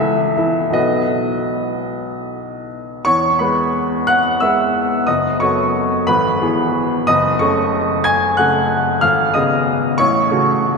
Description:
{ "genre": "classical, romantic character piece for solo piano", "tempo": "50-63 BPM (dotted quarters)", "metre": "6/8", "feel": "rubato", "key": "E major", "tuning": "A4 = 439 Hz", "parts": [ { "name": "clear baby grand piano", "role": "solo", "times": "0.0-10.8 s", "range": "F#1 to G#6", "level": "-14 LUFS", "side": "equal", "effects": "none" } ], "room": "wet cathedral reverb, RT60 4.5 s", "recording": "none", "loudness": "-14 LUFS", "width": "side -4 dB against mid", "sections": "0.0-3.1 A section; 3.1-10.8 B section", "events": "none", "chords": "0.0 A/C#; 0.8 B; 3.1 E; 5.1 B7/F#; 6.1 E/G#; 7.1 F#m; 9.0 C#7/G#; 10.0 F#m/A" }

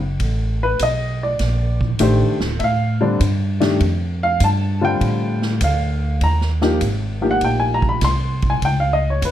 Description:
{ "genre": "jazz piano trio", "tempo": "100 BPM", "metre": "4/4", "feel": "swing 68% on 8ths", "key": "Bb major, Eb major from 6.2 s", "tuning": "A4 = 440 Hz", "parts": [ { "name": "upright bass", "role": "bass", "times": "0.0-9.3 s", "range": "D1 to A2", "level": "-19 LUFS", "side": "equal", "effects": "none" }, { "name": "swinging big-band drum kit", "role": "drums", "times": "0.2-9.3 s", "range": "hi-hat, kick drum, ride cymbal, snare drum", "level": "-26 LUFS", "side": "right 2 dB", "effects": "none" }, { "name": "warm baby grand piano", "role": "melody", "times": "0.6-9.3 s", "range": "D3 to C6", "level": "-20 LUFS", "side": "left 1 dB", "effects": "none" } ], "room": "light reverb", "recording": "dark, warm production", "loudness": "-16 LUFS", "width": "side -11 dB against mid", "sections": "0.0-6.2 A section; 6.2-9.3 A section", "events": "grand piano solo 0.0-9.3", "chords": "0.0 B7; 1.4 Bbmaj9; 6.2 Eb69; 8.6 Dbadd9" }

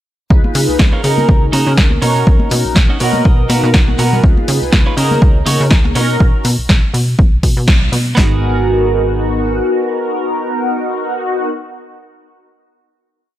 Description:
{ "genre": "filtered disco house", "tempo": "122 BPM", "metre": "4/4", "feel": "swing 56% on 16ths", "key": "G# dorian", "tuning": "A4 = 440 Hz", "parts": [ { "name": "mellow synth brass", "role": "accompaniment", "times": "0.3-11.5 s", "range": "B3 to B4", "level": "-18 LUFS", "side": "equal", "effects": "chorus, phaser, sidechain pumping, low-pass filter" }, { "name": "plucky analog bass", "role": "bass", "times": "0.3-9.6 s", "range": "G#1 to C#3", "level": "-16 LUFS", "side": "equal", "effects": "sidechain pumping, low-pass filter" }, { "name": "punchy analog drum machine", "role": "drums", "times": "0.3-8.3 s", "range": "handclaps, kick drum, snare drum", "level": "-11 LUFS", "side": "equal", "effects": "overdrive" }, { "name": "tube shaker and congas", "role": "percussion", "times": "0.3-6.2 s", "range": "none", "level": "-23 LUFS", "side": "left 2 dB", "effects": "sidechain pumping on perc, low-pass filter on perc" }, { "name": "punchy analog drum machine", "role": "drums", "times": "0.6-8.0 s", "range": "hi-hat, snare drum", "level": "-19 LUFS", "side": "equal", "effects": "overdrive, sidechain pumping on hats" }, { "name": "twelve-string electric guitar", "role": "riff", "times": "0.8-11.5 s", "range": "B3 to G#5", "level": "-21 LUFS", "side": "right 3 dB", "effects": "sidechain pumping, low-pass filter" } ], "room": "light reverb, digital ambience", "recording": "none", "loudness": "-11 LUFS", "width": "side -13 dB against mid", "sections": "0.3-8.2 groove; 8.2-12.1 final chord", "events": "filter sweep 0.3-8.2; clean electric guitar fill 2.8-4.2; band accent 7.7", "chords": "0.3 C#7; 1.0 F#6/C#; 2.0 Bmaj9; 3.0 G#m9/B; 4.2 C#7; 5.0 F#6/C#; 6.0 Bmaj9; 6.9 N.C.; 8.2 G#m7" }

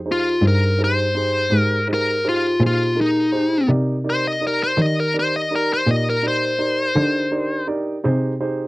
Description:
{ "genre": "slow blues", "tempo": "55 BPM (dotted quarters)", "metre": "12/8", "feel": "straight", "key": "C minor", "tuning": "A4 = 440 Hz", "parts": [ { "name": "muted cello", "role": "bass", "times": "0.0-8.7 s", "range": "F2 to Eb3", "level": "-21 LUFS", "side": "equal", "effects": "none" }, { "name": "dark smooth lead guitar", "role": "melody", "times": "0.1-7.7 s", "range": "Eb4 to Eb5", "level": "-19 LUFS", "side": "left 1 dB", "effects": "overdrive" }, { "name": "dark concert grand piano", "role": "accompaniment", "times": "0.1-8.7 s", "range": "Eb4 to D5", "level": "-24 LUFS", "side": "right 2 dB", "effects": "none" } ], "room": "little or no reverb", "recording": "dry, close 1970s-style studio recording", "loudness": "-17 LUFS", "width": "side -21 dB against mid", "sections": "0.0-8.7 A section", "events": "lead electric guitar solo 0.0-8.7", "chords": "0.0 Fm7; 3.7 Cm7; 8.0 Fm7 (rootless)" }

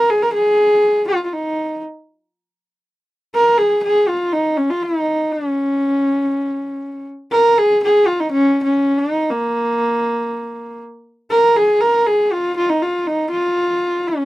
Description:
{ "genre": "mongolian traditional", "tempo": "120 BPM", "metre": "4/4", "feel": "straight", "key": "Bb yu mode", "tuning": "A4 = 442 Hz", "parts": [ { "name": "rich horsehead fiddle", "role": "solo", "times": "0.0-14.2 s", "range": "Bb3 to Bb4", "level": "-15 LUFS", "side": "equal", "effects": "none" } ], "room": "light reverb", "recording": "dry, close 1970s-style studio recording", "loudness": "-15 LUFS", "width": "side -16 dB against mid", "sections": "0.0-11.3 A section; 11.3-14.2 B section", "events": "none", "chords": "none" }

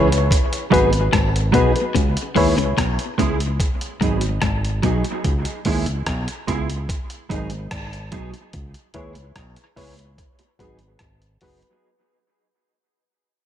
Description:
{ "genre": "dub reggae", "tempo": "73 BPM", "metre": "4/4", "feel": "straight", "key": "C# minor", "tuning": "A4 = 441 Hz", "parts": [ { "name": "mellow electric guitar", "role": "accompaniment", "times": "0.0-11.6 s", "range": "F#3 to G#4", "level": "-25 LUFS", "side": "right 5 dB", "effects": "ensemble chorus, dub echo" }, { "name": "clean electric guitar", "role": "riff", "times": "0.0-5.0 s", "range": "G#2 to D#3", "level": "-27 LUFS", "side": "left 9 dB", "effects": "spring reverb, dub echo" }, { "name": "reed electric piano", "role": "stabs", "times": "0.0-2.5, 8.9-11.7 s", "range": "E4 to C#5", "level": "-21 LUFS", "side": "left 2 dB", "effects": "dub echo" }, { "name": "fingered electric bass", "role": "bass", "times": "0.0-11.6 s", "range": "F#1 to D#2", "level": "-23 LUFS", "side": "equal", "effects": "none" }, { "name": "dusty soul sampler-style drum kit", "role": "drums", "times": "0.1-11.8 s", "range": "hi-hat, kick drum, rim click", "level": "-23 LUFS", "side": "equal", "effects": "none" } ], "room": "moderate plate reverb, RT60 2.7 s", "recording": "none", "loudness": "-18 LUFS", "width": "side -10 dB against mid", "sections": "0.0-11.8 A section", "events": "fade-out 0.0-11.8; break 1.9-8.5", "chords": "0.3 G#m7; 1.9 C#m7; 3.6 G#m7; 5.2 C#m7; 6.9 G#m7; 8.5 C#m7; 10.2 G#m7" }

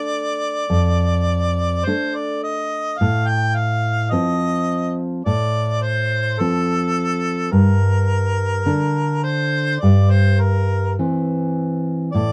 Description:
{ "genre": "romantic duo for harmonica and classical guitar", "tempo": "52 BPM", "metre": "4/4", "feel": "rubato", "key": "unclear", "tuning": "A4 = 441 Hz", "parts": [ { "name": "warm harmonica", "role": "melody", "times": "0.0-12.3 s", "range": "A4 to G5", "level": "-25 LUFS", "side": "equal", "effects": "none" }, { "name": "nylon-string guitar", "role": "accompaniment", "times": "0.0-12.3 s", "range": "F2 to D4", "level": "-21 LUFS", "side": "equal", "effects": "none" } ], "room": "light reverb", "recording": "none", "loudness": "-19 LUFS", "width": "mono", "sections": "0.0-12.3 A section", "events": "none", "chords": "0.0 D5; 0.7 Dm/F; 3.0 F/A; 7.5 Gm; 9.8 C/G" }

